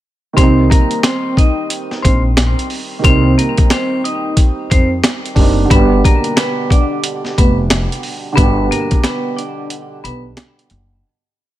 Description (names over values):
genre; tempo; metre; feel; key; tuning
hip hop, boom-bap hip-hop; 90 BPM; 4/4; swing 60% on 16ths; C minor; A4 = 440 Hz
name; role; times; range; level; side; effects
dark upright piano; accompaniment; 0.3-11.1 s; B2 to G4; -20 LUFS; right 4 dB; cassette tape, high-pass filter, low-pass filter
vibraphone with medium hard mallets; melody; 0.4-10.2 s; Bb3 to Eb5; -18 LUFS; equal; high-pass filter, low-pass filter, digital delay
upright bass; bass; 0.4-11.0 s; F1 to F2; -16 LUFS; equal; none
boom bap sampler-style drum kit; drums; 0.4-10.9 s; hi-hat, kick drum, snare drum; -13 LUFS; equal; vintage 12-bit sampler grit
room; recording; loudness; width
little or no reverb; none; -11 LUFS; side -14 dB against mid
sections
0.4-11.0 hook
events
fade-out 8.4-11.0; break 9.7-11.0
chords
0.4 Cm7; 5.7 G